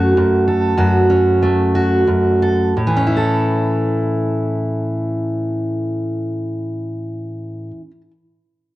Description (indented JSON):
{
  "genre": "folk",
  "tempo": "55-67 BPM (dotted quarters)",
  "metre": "6/8",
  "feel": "straight",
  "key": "A major",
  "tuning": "A4 = 441 Hz",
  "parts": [
    { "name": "fingerpicked steel-string acoustic guitar", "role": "accompaniment", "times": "0.0-8.1 s", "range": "F#2 to A4", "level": "-15 LUFS", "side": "equal", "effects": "none" }
  ],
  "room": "moderate large studio reverb, RT60 1.3 s, small room ambience",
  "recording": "worn, warbling old tape, cassette tape, warbly pitch drift",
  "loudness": "-15 LUFS",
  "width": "side -16 dB against mid",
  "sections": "0.0-2.8 A section; 2.8-7.1 B section",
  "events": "slowing down 0.0-2.8",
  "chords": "0.0 F#m; 2.8 A"
}